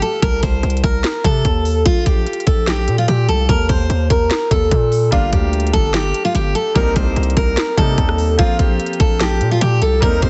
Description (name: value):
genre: hip hop, trap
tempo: 147 BPM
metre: 4/4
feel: half-time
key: unclear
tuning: A4 = 440 Hz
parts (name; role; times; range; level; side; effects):
- picked steel-string acoustic guitar; melody; 0.0-10.3 s; F4 to C5; -21 LUFS; equal; tape echo
- trap drum kit; drums; 0.0-10.3 s; hi-hat, kick drum, rim click, snare drum; -20 LUFS; equal; none
- distorted 808-style bass; bass; 0.2-10.3 s; G1 to C3; -20 LUFS; equal; distortion
- bright concert grand piano; accompaniment; 5.1-10.3 s; F3 to F4; -28 LUFS; equal; none
room: studio reverb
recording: heavily compressed radio sound, multiband compression, nothing above 8.0 kHz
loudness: -16 LUFS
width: mono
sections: 0.0-10.3 A section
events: break 0.0-5.1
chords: 0.2 Cm7; 1.9 N.C.; 3.5 Eb5; 5.1 Gm7; 6.8 Cm7; 8.4 Bbsus2